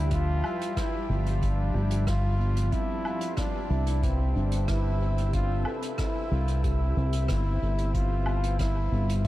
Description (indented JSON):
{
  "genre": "ambient dub",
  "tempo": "92 BPM",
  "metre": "4/4",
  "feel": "straight",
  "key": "unclear",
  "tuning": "A4 = 440 Hz",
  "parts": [
    { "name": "warm trombone", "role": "melody", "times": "0.0-9.3 s", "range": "C4 to F4", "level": "-34 LUFS", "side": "equal", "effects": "tape echo" },
    { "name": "granular cloud pad", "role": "sustained chords", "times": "0.0-9.3 s", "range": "F3 to E5", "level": "-36 LUFS", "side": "left 1 dB", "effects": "built-in reverb" },
    { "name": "handpan", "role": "arpeggios", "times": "0.0-9.3 s", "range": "B3 to G5", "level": "-40 LUFS", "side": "right 1 dB", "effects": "tape echo" },
    { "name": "fingered electric bass", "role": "bass", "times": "0.0-9.3 s", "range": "G1 to D2", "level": "-25 LUFS", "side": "equal", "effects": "none" },
    { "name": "electronic kick drum", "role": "drums", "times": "0.1-9.3 s", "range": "none", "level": "-32 LUFS", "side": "equal", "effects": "overdrive" },
    { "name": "vintage brush drum kit", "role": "drums", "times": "0.1-9.3 s", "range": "hi-hat, rim click, woodblock", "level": "-40 LUFS", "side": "right 1 dB", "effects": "dub echo" }
  ],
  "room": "light reverb, small room ambience",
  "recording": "vinyl crackle",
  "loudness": "-25 LUFS",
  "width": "side -16 dB against mid",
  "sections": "0.0-9.3 A section",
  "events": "none",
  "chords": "0.0 G7; 2.7 Cmaj7; 7.9 G7"
}